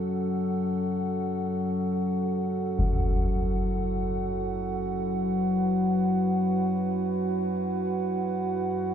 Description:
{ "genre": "dark ambient drone", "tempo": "free time", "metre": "none", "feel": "none", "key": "unclear", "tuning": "A4 = 444 Hz", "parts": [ { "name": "dark analog pad", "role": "sustained chords", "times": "0.0-8.9 s", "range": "F#3 to F#5", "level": "-30 LUFS", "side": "right 4 dB", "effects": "chorus" }, { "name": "deep rumbling drone", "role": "drone", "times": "0.0-8.9 s", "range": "F#2 to F#3", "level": "-28 LUFS", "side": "left 2 dB", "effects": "built-in reverb" }, { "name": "concert bass drum", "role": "percussion", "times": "2.8-3.0 s", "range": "none", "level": "-29 LUFS", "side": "left 1 dB", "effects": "low-pass filter on kick" } ], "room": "wet cathedral reverb, RT60 6.1 s", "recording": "none", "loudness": "-25 LUFS", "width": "side -8 dB against mid", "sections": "0.0-8.9 A section", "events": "none", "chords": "0.0 F#m; 2.8 Esus2/F#", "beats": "free time" }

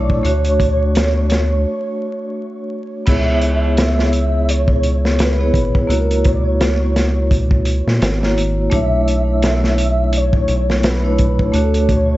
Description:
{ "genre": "trip hop", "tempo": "85 BPM", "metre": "4/4", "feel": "swing 58% on 16ths", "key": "C# phrygian", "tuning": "A4 = 440 Hz", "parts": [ { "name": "pure breathy sine lead", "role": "melody", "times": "0.0-12.2 s", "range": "A4 to E5", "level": "-23 LUFS", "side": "equal", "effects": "phaser, ensemble chorus, cassette tape, tape echo" }, { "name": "vibraphone with medium mallets", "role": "accompaniment", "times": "0.0-12.2 s", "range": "A3 to C#5", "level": "-20 LUFS", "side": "equal", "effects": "tremolo, tape echo" }, { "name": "round analog bass", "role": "bass", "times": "0.0-12.2 s", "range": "G#1 to A#2", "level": "-17 LUFS", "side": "equal", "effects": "tube saturation" }, { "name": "flickering grainy texture", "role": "texture", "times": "0.0-1.7 s", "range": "C#6", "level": "-42 LUFS", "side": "left 2 dB", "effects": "built-in reverb" }, { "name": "crunchy breakbeat drum kit", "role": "drums", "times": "0.1-12.1 s", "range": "crash cymbal, hi-hat, kick drum, snare drum", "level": "-19 LUFS", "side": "equal", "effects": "none" }, { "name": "egg shaker", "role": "percussion", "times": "1.0-1.1 s", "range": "none", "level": "-42 LUFS", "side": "right 2 dB", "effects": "none" } ], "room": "small room ambience", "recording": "vinyl crackle, nothing above 7.8 kHz", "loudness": "-14 LUFS", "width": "side -16 dB against mid", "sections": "0.0-3.1 A section; 3.1-12.2 B section", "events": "break 1.7-3.1", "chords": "0.2 Dmaj7; 3.1 C#m7; 5.9 F#7/C#; 8.7 Bm11; 11.5 Dmaj7", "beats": "| 0.25 0.95 1.66 2.37 | 3.07 3.78 4.48 5.19 | 5.89 6.60 7.31 8.01 | 8.72 9.42 10.13 10.84 | 11.54" }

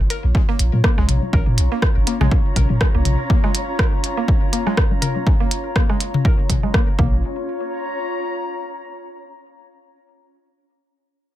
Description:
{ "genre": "minimal techno", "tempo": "122 BPM", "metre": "4/4", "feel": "swing 56% on 16ths", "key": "Bb minor", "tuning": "A4 = 440 Hz", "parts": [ { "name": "punchy sub bass", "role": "bass", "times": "0.0-3.2, 7.0-7.2 s", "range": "Ab1 to Bb2", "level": "-18 LUFS", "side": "equal", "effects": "sidechain pumping" }, { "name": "swarming drone", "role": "texture", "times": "0.5-7.2 s", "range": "Db4", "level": "-34 LUFS", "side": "right 2 dB", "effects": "built-in reverb, sidechain pumping" }, { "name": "warbly tape-like pad", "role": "texture", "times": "0.1-9.2 s", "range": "F4 to Bb5", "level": "-28 LUFS", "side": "left 2 dB", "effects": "chorus, built-in reverb, sidechain pumping" }, { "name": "mallet-like synth pluck", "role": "riff", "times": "0.1-7.2 s", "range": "Ab3 to Bb4", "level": "-27 LUFS", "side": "right 1 dB", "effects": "chorus, sidechain pumping, ping-pong delay" }, { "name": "minimal click drum kit", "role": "drums", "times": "0.1-6.9 s", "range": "hi-hat, rim click", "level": "-23 LUFS", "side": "right 1 dB", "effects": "none" }, { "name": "electronic kick drum", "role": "drums", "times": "0.3-7.1 s", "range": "none", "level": "-18 LUFS", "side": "equal", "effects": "overdrive" }, { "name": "electronic congas and toms", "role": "percussion", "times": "0.7-7.1 s", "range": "none", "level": "-23 LUFS", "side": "left 4 dB", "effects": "none" } ], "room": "light reverb", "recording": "none", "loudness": "-16 LUFS", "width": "side -13 dB against mid", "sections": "0.0-7.2 A section; 7.2-9.2 B section", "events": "filter sweep on synth arpeggio sound 0.0-7.2", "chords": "0.0 Bbm", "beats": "0.35 0.84 | 1.33 1.82 2.31 2.81 | 3.30 3.79 4.28 4.77 | 5.27 5.76 6.25 6.74 | 7.23 7.72 8.22 8.71" }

